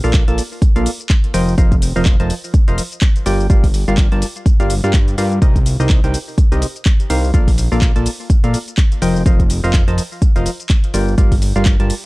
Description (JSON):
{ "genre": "piano house", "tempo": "125 BPM", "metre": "4/4", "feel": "swing 58% on 16ths", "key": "G minor", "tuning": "A4 = 440 Hz", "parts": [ { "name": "percussive organ stab", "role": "riff", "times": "0.0-11.9 s", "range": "C3 to A5", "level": "-21 LUFS", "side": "equal", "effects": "chorus, sidechain pumping, analog delay" }, { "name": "fat analog bass", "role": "bass", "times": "0.0-11.9 s", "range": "F1 to G2", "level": "-17 LUFS", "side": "equal", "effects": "sidechain pumping" }, { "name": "house drum kit", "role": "drums", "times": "0.0-12.0 s", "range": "handclaps, hi-hat, shaker", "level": "-26 LUFS", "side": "equal", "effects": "small room ambience" }, { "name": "electronic kick drum", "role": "drums", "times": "0.1-11.8 s", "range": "none", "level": "-12 LUFS", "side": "equal", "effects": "small room ambience" } ], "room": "little or no reverb", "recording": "dry, gritty hardware recording", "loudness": "-12 LUFS", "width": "side -22 dB against mid", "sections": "0.0-12.1 A section", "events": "none", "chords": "0.0 Bbmaj7; 1.3 F7sus4; 3.3 Gm7; 5.4 Cm7; 7.3 Bbmaj7; 9.0 F7sus4; 10.9 Gm7" }